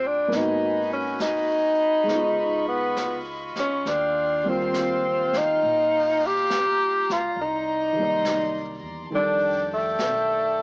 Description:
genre	jazz ballad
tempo	68 BPM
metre	4/4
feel	swing 68% on 8ths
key	unclear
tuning	A4 = 441 Hz
part	warm tenor saxophone	melody	0.0-10.6 s	A3 to G4	-21 LUFS	equal	cassette tape
part	dark concert grand piano	accompaniment	0.0-10.6 s	Bb2 to D5	-31 LUFS	right 1 dB	cassette tape
part	warm chamber string section	sustained chords	0.0-10.6 s	F4 to Db6	-33 LUFS	equal	cassette tape
part	upright bass	bass	0.0-10.6 s	Ab1 to Bb2	-41 LUFS	equal	none
part	vintage brush drum kit	drums	0.3-10.6 s	brushed snare drum, hi-hat, snare drum	-34 LUFS	equal	cassette tape
room	moderate booth ambience, RT60 0.2 s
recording	home recording on cassette, small speaker sound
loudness	-21 LUFS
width	side -29 dB against mid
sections	0.0-10.6 A section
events	none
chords	0.3 Abm7; 2.1 Db9; 3.9 Eb69; 7.4 Cm9; 9.1 F13

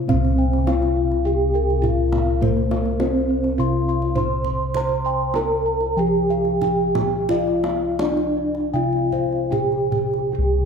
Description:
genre	Javanese gamelan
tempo	71-103 BPM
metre	4/4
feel	straight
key	C slendro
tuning	A4 = 441 Hz
part	gamelan-type bronze metallophone	melody	0.0-10.7 s	Bb3-45c to C5	-22 LUFS	equal	slapback echo
part	gamelan-type bossed gongs	bass	0.0-10.7 s	C2 to C5	-23 LUFS	equal	none
part	gamelan-type bossed gongs	arpeggios	0.1-10.0 s	Bb4-45c to C6	-28 LUFS	left 4 dB	none
part	gamelan-type bronze metallophone	arpeggios	0.1-10.7 s	Bb4-45c to C6	-30 LUFS	right 6 dB	none
part	kendang	percussion	0.1-10.2 s	none	-28 LUFS	right 2 dB	none
room	light reverb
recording	close, detailed microphones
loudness	-18 LUFS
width	side -6 dB against mid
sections	0.1-10.3 A section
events	none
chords	none

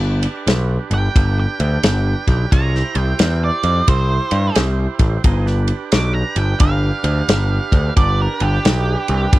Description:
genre	blues rock power trio and southern rock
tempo	88 BPM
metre	4/4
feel	swing 64% on 8ths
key	G mixolydian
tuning	A4 = 441 Hz
part	overdriven tonewheel organ	sustained chords	0.0-9.4 s	D4 to C#5	-28 LUFS	right 7 dB	lush chorus
part	overdriven picked electric bass	bass	0.0-9.4 s	G1 to G2	-17 LUFS	equal	none
part	vintage drum kit	drums	0.2-9.4 s	kick drum, ride cymbal, snare drum	-16 LUFS	equal	none
part	octave-fuzz lead guitar	melody	0.9-9.4 s	G4 to D6	-23 LUFS	right 3 dB	distortion, tape echo
room	little or no reverb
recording	dry, close 1970s-style studio recording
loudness	-14 LUFS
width	side -17 dB against mid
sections	0.0-9.4 A section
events	lead electric guitar solo 0.0-9.4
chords	0.0 G; 2.5 C; 5.3 G

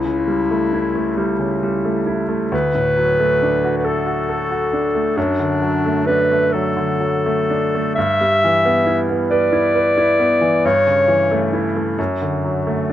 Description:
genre	classical, romantic duo for clarinet and grand piano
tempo	45 BPM (dotted quarters)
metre	6/8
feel	rubato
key	D major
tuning	A4 = 440 Hz
part	warm clarinet	melody	0.0-11.5 s	D4 to E5	-17 LUFS	left 1 dB	none
part	bright concert grand piano	accompaniment	0.0-12.9 s	C#2 to B4	-19 LUFS	right 1 dB	none
room	light reverb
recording	dark, warm production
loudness	-15 LUFS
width	side -12 dB against mid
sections	0.0-12.9 A section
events	none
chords	0.0 A7/C#; 2.5 D; 5.2 D/F#; 8.0 Em/G; 10.6 A7/G; 12.0 D/F#

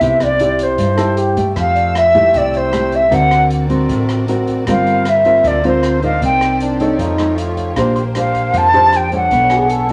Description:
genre	bossa nova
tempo	155 BPM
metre	4/4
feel	straight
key	F major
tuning	A4 = 440 Hz
part	concert flute	melody	0.0-9.9 s	C5 to A5	-15 LUFS	equal	none
part	nylon-string guitar	accompaniment	0.0-9.9 s	G2 to D5	-20 LUFS	equal	none
part	hollow-body short-scale fingered electric bass	bass	0.0-9.9 s	G1 to G2	-24 LUFS	equal	none
part	open jazz drum kit	drums	0.0-9.9 s	hi-hat, kick drum, rim click	-31 LUFS	equal	none
part	breathy trombone	second line	1.0-1.5, 6.6-9.9 s	D4 to A4	-22 LUFS	equal	none
part	warm symphonic violin section	sustained chords	1.6-9.9 s	A3 to E6	-32 LUFS	equal	none
part	tine electric piano	accompaniment	1.8-3.1, 8.0-9.9 s	D5 to C6	-32 LUFS	equal	none
room	wet studio reverb, RT60 0.8 s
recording	none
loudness	-14 LUFS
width	mono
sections	0.0-1.6 A section; 1.6-9.9 B section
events	none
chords	0.0 Cmaj7; 1.6 Fmaj9; 3.1 D7b13; 4.7 Gm7; 6.2 Cm9; 7.0 Faug7; 7.8 Bb69; 9.3 Bm9

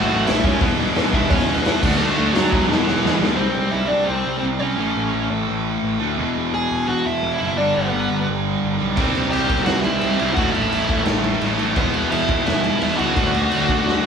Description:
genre	punk rock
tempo	172 BPM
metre	4/4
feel	straight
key	unclear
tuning	A4 = 441 Hz
part	dark smooth lead guitar	melody	0.0-14.1 s	E3 to G#5	-22 LUFS	equal	overdrive
part	high-gain distorted guitar	riff	0.0-3.4, 9.0-14.1 s	A2 to F#4	-25 LUFS	right 1 dB	distortion
part	overdriven electric guitar	riff	0.0-14.1 s	E2 to D4	-25 LUFS	left 7 dB	none
part	tight distorted guitar	riff	0.0-14.1 s	E2 to D4	-24 LUFS	right 8 dB	distortion
part	fuzz picked electric bass	bass	0.0-14.1 s	E1 to F#2	-26 LUFS	equal	overdrive
part	raw garage drum kit	drums	0.3-3.3, 9.0-13.9 s	crash cymbal, hi-hat, kick drum, snare drum	-21 LUFS	equal	none
room	light reverb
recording	band playing live in one room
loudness	-17 LUFS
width	side -6 dB against mid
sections	0.0-3.4 A section; 3.4-14.1 B section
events	drum fill 2.7-3.4, 13.9; half time 3.4-14.1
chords	0.0 A; 0.6 E; 1.8 D; 2.5 E; 3.4 C; 4.8 A; 6.2 E; 7.6 G; 9.0 C; 10.4 A; 11.8 E; 13.2 D

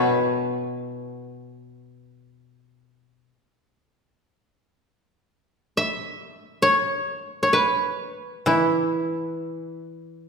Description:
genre	japanese traditional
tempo	free time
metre	none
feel	none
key	E kumoi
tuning	A4 = 440 Hz
part	koto	melody	0.0-10.3 s	E4 to B5	-22 LUFS	right 1 dB	none
part	koto	accompaniment	0.0-10.3 s	B2 to E3	-25 LUFS	left 2 dB	none
room	wet scoring stage reverb, RT60 1.9 s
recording	recorded in a church or concert hall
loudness	-21 LUFS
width	side -5 dB against mid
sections	0.0-10.3 A section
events	none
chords	none

